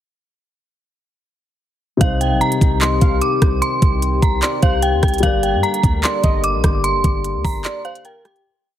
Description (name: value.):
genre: hip hop, trap.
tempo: 149 BPM.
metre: 4/4.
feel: half-time.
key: C minor.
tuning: A4 = 440 Hz.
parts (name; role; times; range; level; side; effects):
dark detuned synth bell; melody; 2.0-8.4 s; F5 to D6; -21 LUFS; right 2 dB; chorus, tremolo, ping-pong delay.
dark concert grand piano; accompaniment; 2.0-8.5 s; C3 to D5; -24 LUFS; left 4 dB; none.
mellow French horn section; sustained chords; 2.0-8.4 s; D3 to G4; -25 LUFS; left 6 dB; stereo widening.
warm 808-style bass; bass; 2.0-7.6 s; F1 to G2; -20 LUFS; equal; none.
trap drum kit; drums; 2.0-8.4 s; handclaps, hi-hat, kick drum, rim click; -18 LUFS; equal; none.
warm velvety synth lead; second line; 2.8-8.4 s; G4 to F5; -28 LUFS; right 2 dB; chorus, ping-pong delay.
room: little or no reverb.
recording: heavily compressed radio sound, multiband compression.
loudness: -14 LUFS.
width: side -11 dB against mid.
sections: 2.0-8.5 hook.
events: fade-out 6.8-8.5; break 7.6-8.5.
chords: 2.0 Cm; 5.2 Gm.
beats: | 2.01 2.41 2.81 3.22 | 3.62 4.02 4.42 4.83 | 5.23 5.63 6.04 6.44 | 6.84 7.24 7.65 8.05.